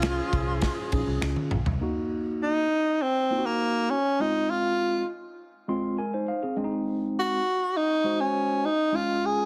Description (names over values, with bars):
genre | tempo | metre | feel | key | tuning
uptempo 1960s-style soul | 101 BPM | 4/4 | straight | Eb dorian | A4 = 442 Hz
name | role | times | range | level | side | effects
breathy tenor saxophone | melody | 0.0-9.5 s | Bb3 to Ab4 | -27 LUFS | equal | none
mellow horn section | second line | 0.0-1.5 s | F3 to Ab4 | -38 LUFS | equal | none
vibraphone with hard mallets | second line | 0.0-1.2 s | none | barely audible | none | none
mellow tine electric piano | accompaniment | 0.0-9.5 s | Ab3 to C6 | -32 LUFS | equal | none
vintage muted fingered electric bass | bass | 0.0-1.8 s | Bb1 to Db2 | -32 LUFS | equal | none
natural country drum kit | drums | 0.0-1.8 s | kick drum, ride cymbal, snare drum, toms | -32 LUFS | equal | none
finger snap | percussion | 0.0-1.4 s | none | -37 LUFS | equal | none
room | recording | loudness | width
light reverb, small room ambience | heavily compressed radio sound | -27 LUFS | mono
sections
0.0-1.8 A section; 1.8-9.5 A section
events
drum fill 1.2-1.8; tine electric piano fill 5.4-6.6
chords
0.0 Db; 1.8 Ebm; 4.2 Fm; 6.6 Ab; 8.9 Db